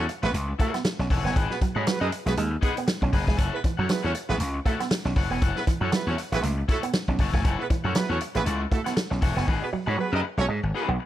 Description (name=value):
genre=funk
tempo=118 BPM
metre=4/4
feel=swing 56% on 16ths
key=F# dorian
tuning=A4 = 440 Hz
part: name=mellow horn section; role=second line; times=0.0-10.9 s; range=G#3 to D#5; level=-31 LUFS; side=right 4 dB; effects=none
part: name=electric guitar at the edge of break-up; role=accompaniment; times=0.0-11.0 s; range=D#4 to G#5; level=-32 LUFS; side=left 7 dB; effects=lush chorus
part: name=gritty slap bass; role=bass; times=0.0-11.0 s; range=E1 to G#2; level=-27 LUFS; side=equal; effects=overdrive
part: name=electric guitar with an envelope filter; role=riff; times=0.1-11.0 s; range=E3 to C#4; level=-32 LUFS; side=right 5 dB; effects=tube saturation
part: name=vintage drum kit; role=drums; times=0.1-9.6 s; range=hi-hat, kick drum, snare drum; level=-26 LUFS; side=equal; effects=none
room=small room ambience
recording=none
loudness=-23 LUFS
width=side -13 dB against mid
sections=0.0-11.1 A section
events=drum fill 9.5-11.1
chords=0.0 F#m7; 9.5 G#m7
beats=0.34 0.85 | 1.36 1.86 2.37 2.88 | 3.39 3.90 4.40 4.91 | 5.42 5.93 6.43 6.94 | 7.45 7.96 8.46 8.97 | 9.48 9.98 10.49 11.00